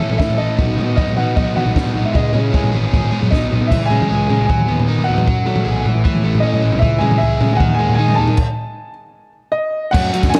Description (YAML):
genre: indie rock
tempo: 154 BPM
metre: 4/4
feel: straight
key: unclear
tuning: A4 = 440 Hz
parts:
  - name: warm upright piano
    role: melody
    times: 0.0-10.4 s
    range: C#5 to A5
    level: -24 LUFS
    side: equal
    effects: slapback echo, analog delay
  - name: overdriven electric guitar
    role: riff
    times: 0.0-10.4 s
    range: D#3 to A4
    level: -24 LUFS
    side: equal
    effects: slapback echo
  - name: fuzz picked electric bass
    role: bass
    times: 0.0-10.4 s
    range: G#1 to F#3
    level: -24 LUFS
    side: equal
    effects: overdrive
  - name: compact cocktail drum kit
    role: drums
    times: 0.0-10.4 s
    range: crash cymbal, hi-hat, kick drum, snare drum, toms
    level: -19 LUFS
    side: equal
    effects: none
room: light reverb, studio ambience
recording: none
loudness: -16 LUFS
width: mono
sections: 0.0-3.7 A section; 3.7-9.9 B section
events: drum fill 3.3-3.7; stop 8.4-9.9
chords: 0.0 A; 0.6 B; 2.1 C#m; 2.7 G#m7; 3.3 B; 3.7 C#m; 4.5 B6/D#; 5.3 F#madd9; 5.9 A; 6.8 C#m; 7.6 D#madd11; 8.4 N.C.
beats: 0.19 | 0.58 0.97 1.36 1.75 | 2.15 2.54 2.93 3.32 | 3.71 4.10 4.49 4.88 | 5.27 5.66 6.05 6.44 | 6.83 7.21 7.60 7.99 | 8.38 8.77 9.15 9.54 | 9.93 10.32